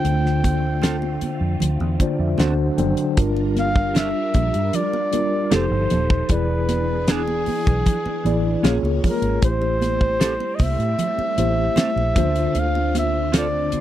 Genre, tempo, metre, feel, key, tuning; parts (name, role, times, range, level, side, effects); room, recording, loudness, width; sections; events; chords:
lush 1970s-style soul; 77 BPM; 4/4; straight; G dorian; A4 = 442 Hz
breathy flugelhorn; melody; 0.0-13.8 s; G#4 to G5; -24 LUFS; right 1 dB
mellow tine electric piano; accompaniment; 0.0-13.8 s; D3 to G5; -24 LUFS; left 2 dB; medium stereo tremolo
phased string machine; sustained chords; 0.0-13.8 s; D3 to Bb4; -31 LUFS; equal; ensemble chorus, phaser
vintage muted fingered electric bass; bass; 0.0-13.8 s; Eb1 to A2; -23 LUFS; equal
damped 70s drum kit; drums; 0.0-13.8 s; hi-hat, kick drum, snare drum; -20 LUFS; equal
congas; percussion; 0.4-13.8 s; -29 LUFS; right 5 dB
semi-hollow electric guitar; riff; 0.8-13.5 s; B3 to Bb4; -27 LUFS; right 8 dB; analog chorus
little or no reverb; dry, close 1970s-style studio recording; -18 LUFS; side -12 dB against mid
0.0-3.2 A section; 3.2-13.8 B section
tine electric piano fill 1.6-3.2
0.0 Dm7; 2.4 D7; 3.2 Gm7; 5.5 F9; 6.3 E7; 8.6 Bbm7; 9.4 Am7; 12.2 Dm7